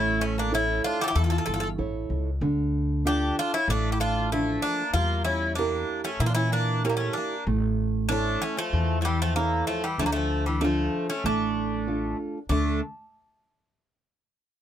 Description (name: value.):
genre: greek folk, Greek bouzouki band.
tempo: 95 BPM.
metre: 4/4.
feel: straight.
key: D harmonic minor.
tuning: A4 = 437 Hz.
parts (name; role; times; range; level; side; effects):
Greek bouzouki; melody; 0.0-12.8 s; G3 to A4; -28 LUFS; equal; none.
Greek bouzouki; second line; 0.0-12.8 s; E3 to F4; -34 LUFS; left 4 dB; none.
fingerpicked acoustic archtop guitar; accompaniment; 0.0-12.8 s; D3 to C#5; -29 LUFS; right 3 dB; none.
upright bass; bass; 0.0-12.8 s; G1 to Bb2; -27 LUFS; left 1 dB; none.
room: little or no reverb.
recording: close, detailed microphones.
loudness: -24 LUFS.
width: side -10 dB against mid.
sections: 0.0-12.5 A section; 12.5-14.6 B section.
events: none.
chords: 0.0 A; 2.4 Dm; 4.9 Edim; 7.5 A; 10.0 Dm; 12.5 D5.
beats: 0.52 1.16 1.79 | 2.42 3.05 3.68 4.31 | 4.94 5.57 6.20 6.83 | 7.46 8.10 8.73 9.36 | 9.99 10.62 11.25 11.88 | 12.51.